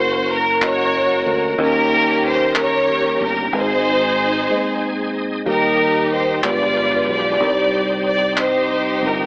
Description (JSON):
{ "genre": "slow gospel", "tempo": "62 BPM (dotted quarters)", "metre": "6/8", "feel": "straight", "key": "Eb major from 5.5 s", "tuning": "A4 = 437 Hz", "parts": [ { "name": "warm studio string section", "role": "melody", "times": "0.0-9.3 s", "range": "Db4 to D5", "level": "-20 LUFS", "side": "equal", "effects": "none" }, { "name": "mellow tine electric piano", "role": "accompaniment", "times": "0.0-9.3 s", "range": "G2 to Eb5", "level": "-25 LUFS", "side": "equal", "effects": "none" }, { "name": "bright tonewheel organ", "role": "sustained chords", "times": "0.0-9.3 s", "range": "F3 to Ab5", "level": "-29 LUFS", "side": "equal", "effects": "slow rotary speaker, overdrive, chorus vibrato" }, { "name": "fingered electric bass", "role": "bass", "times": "0.0-9.3 s", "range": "Gb1 to Eb2", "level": "-29 LUFS", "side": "equal", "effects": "none" }, { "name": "group handclap", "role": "percussion", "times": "0.6-2.9, 6.4-8.7 s", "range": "none", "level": "-23 LUFS", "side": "equal", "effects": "none" } ], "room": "light reverb, small room ambience", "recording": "AM radio sound", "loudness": "-18 LUFS", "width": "mono", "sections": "0.0-5.5 A section; 5.5-9.3 A section", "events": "break 4.5-5.5; tonewheel organ fill 4.5-5.5", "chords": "0.0 Gb; 1.6 Eb7; 3.5 Ab; 5.5 Eb; 6.4 G7b9; 7.4 Cm" }